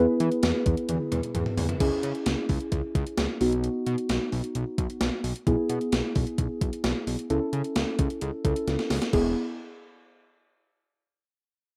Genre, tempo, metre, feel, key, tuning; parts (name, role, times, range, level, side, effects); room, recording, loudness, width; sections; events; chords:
synth-pop; 131 BPM; 4/4; straight; E major; A4 = 440 Hz
muted felt-like synth keys; accompaniment; 0.0-9.3 s; B3 to B4; -30 LUFS; equal; chorus
fat analog bass; bass; 0.0-9.3 s; E1 to E3; -32 LUFS; equal
gated 80s digital drum machine; drums; 0.2-9.2 s; crash cymbal, hi-hat, kick drum, snare drum, toms; -31 LUFS; equal; gated reverb, gated reverb snare, overdrive
light reverb, digital ambience; rough home demo mix; -27 LUFS; mono
0.0-1.8 A section; 1.8-9.1 B section; 9.1-11.0 C section
drum fill 0.9-1.8, 8.7-9.1
0.0 E; 1.8 C#m; 3.4 B; 5.5 E/B; 7.3 A/C#; 9.1 E